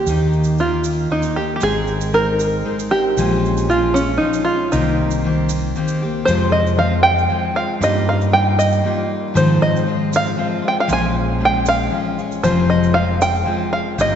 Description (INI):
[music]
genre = acoustic folk duo or small band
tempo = 117 BPM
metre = 3/4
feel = straight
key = unclear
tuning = A4 = 440 Hz
[part]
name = open-back banjo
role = melody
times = 0.0-14.2 s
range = Db4 to Ab5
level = -18 LUFS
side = right 1 dB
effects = none
[part]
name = picked steel-string acoustic guitar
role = accompaniment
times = 0.0-14.2 s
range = F2 to Bb4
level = -20 LUFS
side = left 2 dB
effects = none
[part]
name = fingered electric bass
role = bass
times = 0.1-14.2 s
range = F1 to Ab2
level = -22 LUFS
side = equal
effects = none
[part]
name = egg shaker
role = percussion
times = 0.1-14.1 s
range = none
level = -36 LUFS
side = right 8 dB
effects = none
[sound]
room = wet church reverb, RT60 2.8 s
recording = recorded in a church or concert hall, nothing above 7.8 kHz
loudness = -15 LUFS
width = side -8 dB against mid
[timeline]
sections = 0.0-6.3 A section; 6.3-14.2 B section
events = none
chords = 0.1 Eb; 1.6 Abadd9; 3.2 Bbm7; 4.7 Cm7; 6.3 Fm; 7.8 Ebadd9/G; 9.4 Ab6; 10.9 Bbm7; 12.4 Fm